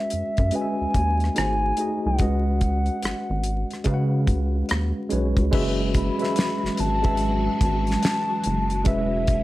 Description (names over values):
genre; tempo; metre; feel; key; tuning
R&B, neo-soul; 72 BPM; 4/4; swing 63% on 16ths; F# dorian; A4 = 440 Hz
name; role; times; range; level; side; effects
hollow clarinet-like synth lead; melody; 0.0-9.4 s; E5 to B5; -27 LUFS; left 1 dB; chorus
tine electric piano; accompaniment; 0.0-9.4 s; G#3 to F#5; -27 LUFS; equal; overdrive, fast stereo tremolo
rubbery square bass; bass; 0.1-9.4 s; E1 to C#3; -24 LUFS; equal; none
damped 70s drum kit; drums; 0.1-9.4 s; crash cymbal, hi-hat, kick drum, rim click, snare drum; -24 LUFS; equal; none
string machine, full ensemble; sustained chords; 5.5-9.4 s; E3 to F#4; -31 LUFS; equal; phaser, ensemble chorus
room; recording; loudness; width
moderate studio reverb, RT60 0.6 s; vinyl crackle; -20 LUFS; side -16 dB against mid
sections
0.0-5.5 A section; 5.5-9.4 B section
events
none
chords
0.0 Emaj9; 1.4 G#7b9; 2.2 C#9sus4; 5.5 F#m9; 8.9 Eadd9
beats
0.53 1.36 | 2.20 3.03 3.86 4.70 | 5.53 6.36 7.20 8.03 | 8.86